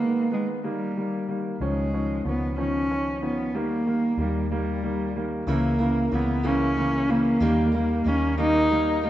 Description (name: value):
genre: pop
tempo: 62 BPM (dotted quarters)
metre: 6/8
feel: straight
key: unclear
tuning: A4 = 440 Hz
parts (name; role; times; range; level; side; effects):
- warm cello; melody; 0.0-9.1 s; G3 to D#4; -24 LUFS; equal; none
- clear baby grand piano; accompaniment; 0.0-9.1 s; C#3 to C#4; -28 LUFS; right 1 dB; none
- vintage muted fingered electric bass; bass; 1.6-9.1 s; C#2 to D#2; -30 LUFS; equal; none
- picked steel-string acoustic guitar; arpeggios; 5.5-9.1 s; C#3 to A#4; -31 LUFS; right 1 dB; none
room: moderate lush hall reverb, RT60 2.4 s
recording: rough home demo mix, nothing above 7.8 kHz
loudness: -22 LUFS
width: side -13 dB against mid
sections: 0.0-1.6 A section; 1.6-9.1 B section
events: none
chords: 0.0 G#m/D#; 0.6 D#; 1.6 C#add9; 3.5 D#; 5.5 A#dim/C#; 7.4 D#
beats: 0.63 | 1.60 2.57 | 3.54 4.51 | 5.48 6.45 | 7.41 8.38